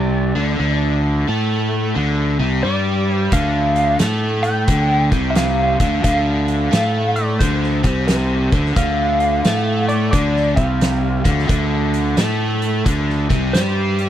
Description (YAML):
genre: blues rock power trio and southern rock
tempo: 88 BPM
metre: 4/4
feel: swing 65% on 8ths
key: D minor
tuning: A4 = 436 Hz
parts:
  - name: lightly driven lead guitar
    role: melody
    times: 0.0-14.1 s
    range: C5 to G5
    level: -22 LUFS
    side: equal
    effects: wah
  - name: biting overdriven guitar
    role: riff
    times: 0.0-14.1 s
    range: C3 to A3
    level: -20 LUFS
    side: equal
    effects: none
  - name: fuzz fingered electric bass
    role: bass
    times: 0.0-14.1 s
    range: C2 to A2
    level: -20 LUFS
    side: equal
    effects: overdrive
  - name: oversized low-tuned drum kit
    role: drums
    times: 3.3-14.1 s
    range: hi-hat, kick drum, snare drum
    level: -21 LUFS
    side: equal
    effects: none
room: little or no reverb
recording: dry, close 1970s-style studio recording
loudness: -15 LUFS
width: side -11 dB against mid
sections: 0.0-14.1 A section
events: none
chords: 0.0 Dm